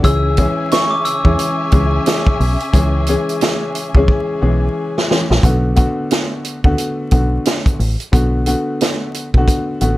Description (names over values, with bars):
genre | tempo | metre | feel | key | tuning
hip hop, boom-bap hip-hop | 89 BPM | 4/4 | swing 61% on 16ths | B dorian | A4 = 440 Hz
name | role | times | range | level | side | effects
glockenspiel with brass mallets | melody | 0.0-2.2 s | C#6 to E6 | -22 LUFS | equal | high-pass filter, low-pass filter, digital delay
dark upright piano | accompaniment | 0.0-10.0 s | D3 to G#4 | -19 LUFS | left 2 dB | high-pass filter, low-pass filter
deep dub fingered electric bass | bass | 0.0-10.0 s | A1 to E2 | -16 LUFS | equal | none
vintage drum kit | drums | 0.0-10.0 s | hi-hat, kick drum, snare drum | -15 LUFS | equal | none
dark studio string section | sustained chords | 0.1-5.4 s | C#3 to G#5 | -26 LUFS | left 1 dB | high-pass filter, low-pass filter
room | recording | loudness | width
light reverb | vinyl crackle | -13 LUFS | side -17 dB against mid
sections
0.0-5.4 A section; 5.4-10.0 B section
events
drum fill 4.1-5.4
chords
0.0 C#m; 5.4 Bm7